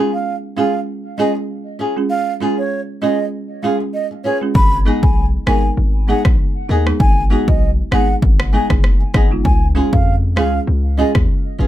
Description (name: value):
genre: dancehall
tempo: 98 BPM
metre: 4/4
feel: swing 56% on 16ths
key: unclear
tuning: A4 = 439 Hz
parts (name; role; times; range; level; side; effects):
- folk marimba with medium hard mallets; accompaniment; 0.0-11.7 s; G#3 to B4; -22 LUFS; right 3 dB; none
- flamenco guitar; arpeggios; 0.0-11.7 s; B3 to G#4; -22 LUFS; left 2 dB; none
- baroque flute; melody; 0.1-11.1 s; C#5 to B5; -21 LUFS; right 3 dB; tape echo
- hard-hitting 808-style bass; bass; 4.6-11.7 s; F#1 to E#2; -17 LUFS; equal; none
- deep house drum kit; drums; 4.6-11.3 s; kick drum, rim click; -15 LUFS; equal; overdrive
room: little or no reverb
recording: none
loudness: -14 LUFS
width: side -13 dB against mid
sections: 0.0-11.7 A section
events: none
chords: 0.0 C#; 4.6 G#m; 9.4 C#